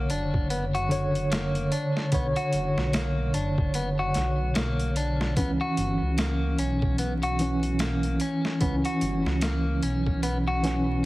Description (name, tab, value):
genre	trip hop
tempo	74 BPM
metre	4/4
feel	swing 59% on 16ths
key	B harmonic minor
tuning	A4 = 437 Hz
part	mellow tine electric piano	accompaniment	0.0-11.1 s	D3 to C#5	-27 LUFS	equal	medium stereo tremolo
part	clean electric guitar	arpeggios	0.0-11.0 s	A#3 to F#4	-32 LUFS	left 2 dB	tape echo
part	dark detuned saw bass	bass	0.0-11.1 s	F#1 to C#2	-29 LUFS	equal	none
part	boom bap sampler-style drum kit	drums	0.1-10.9 s	hi-hat, kick drum, snare drum	-31 LUFS	equal	overdrive
room	light reverb, digital ambience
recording	heavily compressed radio sound, vinyl crackle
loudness	-24 LUFS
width	side -18 dB against mid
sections	0.0-11.1 A section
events	none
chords	0.0 Bmadd9; 5.4 C#m7